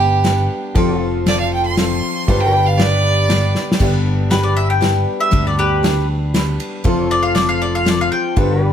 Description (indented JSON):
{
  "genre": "honky-tonk and classic country",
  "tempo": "118 BPM",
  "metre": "3/4",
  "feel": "straight",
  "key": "G mixolydian",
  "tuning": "A4 = 440 Hz",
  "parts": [
    { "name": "clear fiddle", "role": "second line", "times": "0.0-3.8 s", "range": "G4 to C6", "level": "-18 LUFS", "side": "right 4 dB", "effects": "none" },
    { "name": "picked steel-string acoustic guitar", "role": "accompaniment", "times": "0.0-8.7 s", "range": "G2 to B4", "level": "-22 LUFS", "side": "left 4 dB", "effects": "none" },
    { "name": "warm upright piano", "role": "accompaniment", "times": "0.0-8.7 s", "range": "D4 to B5", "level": "-27 LUFS", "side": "right 3 dB", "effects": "none" },
    { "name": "pedal steel guitar", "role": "sustained chords", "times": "0.0-8.7 s", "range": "F4 to D5", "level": "-24 LUFS", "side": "left 1 dB", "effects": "none" },
    { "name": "fingered electric bass", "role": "bass", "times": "0.0-8.7 s", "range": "F1 to D2", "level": "-19 LUFS", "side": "equal", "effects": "none" },
    { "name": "unplugged drum kit", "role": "drums", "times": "0.2-8.5 s", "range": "crash cymbal, kick drum, ride cymbal, snare drum", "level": "-20 LUFS", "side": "equal", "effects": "none" },
    { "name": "mandolin", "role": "melody", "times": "4.3-8.4 s", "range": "G4 to G5", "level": "-18 LUFS", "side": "left 2 dB", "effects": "none" }
  ],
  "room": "light reverb",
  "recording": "heard from further back in the room",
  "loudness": "-14 LUFS",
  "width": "side -9 dB against mid",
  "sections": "0.0-3.8 A section; 3.8-8.7 A section",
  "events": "fiddle solo 0.0-3.8; drum fill 3.5; mandolin solo 3.8-8.7; upright piano fill 6.1-6.8",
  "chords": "0.0 G; 0.8 F; 2.3 G; 6.8 F"
}